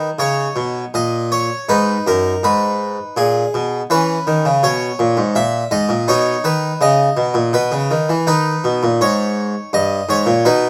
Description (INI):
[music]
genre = classical, baroque-style suite movement for harpsichord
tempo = 82 BPM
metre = 3/4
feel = rubato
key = B major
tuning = A4 = 440 Hz
[part]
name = harpsichord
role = solo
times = 0.0-10.7 s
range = F#2 to E5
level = -17 LUFS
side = equal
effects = none
[sound]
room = light reverb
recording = close, detailed microphones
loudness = -17 LUFS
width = mono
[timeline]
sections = 0.0-10.7 A section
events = none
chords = 0.0 B; 0.9 N.C.; 1.7 G#m; 3.9 C#m7; 5.4 Emaj7#11; 6.1 B; 8.3 G#m; 9.7 D#7/G